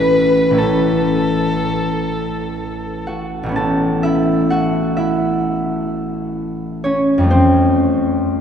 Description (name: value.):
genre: classical, impressionist duo for violin and harp.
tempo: 59-66 BPM.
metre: 4/4.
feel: rubato.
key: A major.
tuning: A4 = 442 Hz.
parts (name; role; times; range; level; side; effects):
warm violin; melody; 0.0-3.1 s; A4 to B4; -19 LUFS; left 1 dB; none.
concert harp; accompaniment; 0.0-8.4 s; A1 to A5; -15 LUFS; equal; none.
room: wet cathedral reverb, RT60 5.5 s.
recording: heard from further back in the room.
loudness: -15 LUFS.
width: side -8 dB against mid.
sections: 0.0-3.6 A section; 3.6-8.4 A section.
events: none.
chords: 0.0 Aadd9; 7.3 Fadd9.